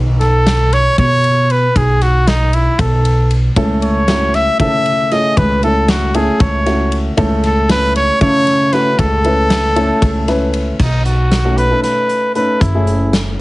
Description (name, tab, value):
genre	progressive instrumental, band music in an uneven meter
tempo	232 BPM (eighths)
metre	7/8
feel	straight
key	B mixolydian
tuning	A4 = 442 Hz
part	upright bass	bass	0.0-13.4 s	F#1 to C#3	-15 LUFS	equal	none
part	warm trumpet	melody	0.2-13.2 s	D#4 to E5	-15 LUFS	equal	none
part	big rock drum kit	drums	0.2-13.3 s	crash cymbal, hi-hat, kick drum, ride cymbal, snare drum	-20 LUFS	left 1 dB	none
part	dark baby grand piano	accompaniment	3.6-13.3 s	A3 to B4	-18 LUFS	equal	none
room	light reverb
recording	heavily compressed radio sound, nothing above 10.8 kHz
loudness	-11 LUFS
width	side -19 dB against mid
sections	0.0-10.8 A section; 10.8-13.4 B section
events	none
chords	0.0 B7(no3); 3.6 A/C#; 10.8 B7; 12.6 F#m7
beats	0.21 0.47 0.73 0.98 1.24 1.50 | 1.76 2.02 2.27 2.53 2.79 3.05 3.31 | 3.56 3.82 4.08 4.34 4.60 4.86 5.11 | 5.37 5.63 5.89 6.15 6.40 6.66 6.92 | 7.18 7.44 7.70 7.95 8.21 8.47 8.73 | 8.99 9.25 9.51 9.76 10.02 10.28 10.54 | 10.80 11.06 11.32 11.58 11.84 12.10 12.36 | 12.62 12.87 13.13 13.39